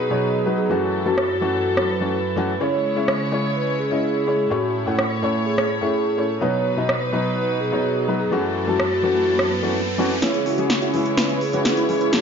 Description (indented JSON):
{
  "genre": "EDM, festival progressive house",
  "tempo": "126 BPM",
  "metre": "4/4",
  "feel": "straight",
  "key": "C# minor",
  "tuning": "A4 = 444 Hz",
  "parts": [
    { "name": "vibraphone with soft mallets", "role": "melody", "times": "0.0-12.2 s", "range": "F#4 to C#5", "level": "-24 LUFS", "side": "right 1 dB", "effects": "ping-pong delay" },
    { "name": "warm studio string section", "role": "sustained chords", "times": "0.0-12.2 s", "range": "F#2 to C#5", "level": "-25 LUFS", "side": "right 1 dB", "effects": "none" },
    { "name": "felt-muted upright piano", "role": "accompaniment", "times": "0.1-12.2 s", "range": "A2 to F#5", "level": "-24 LUFS", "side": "left 2 dB", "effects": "none" },
    { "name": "big-room dance drum kit", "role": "drums", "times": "1.2-12.2 s", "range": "hi-hat, rim click, snare drum", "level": "-24 LUFS", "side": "right 1 dB", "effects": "low-pass filter on snare, low-pass filter on hats, low-pass filter on room" },
    { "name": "riser", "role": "sound effects", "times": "8.1-10.2 s", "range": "none", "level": "-30 LUFS", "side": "right 3 dB", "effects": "none" },
    { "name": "supersaw chords", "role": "riff", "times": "10.2-12.2 s", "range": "C#4 to B4", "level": "-24 LUFS", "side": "right 2 dB", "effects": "low-pass filter" }
  ],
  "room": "moderate lush hall reverb, RT60 1.9 s, studio ambience",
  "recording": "nothing above 7.5 kHz",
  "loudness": "-18 LUFS",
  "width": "side -6 dB against mid",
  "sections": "0.0-10.2 A section; 10.2-12.2 B section",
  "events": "riser 8.1-10.2; build-up 10.2-12.2; drum fill 10.2-12.2; filter sweep on supersaw synth 10.2-12.2",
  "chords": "0.0 B; 0.7 F#m7; 2.6 C#m; 4.5 A; 6.4 B; 8.3 F#m7; 10.2 C#m"
}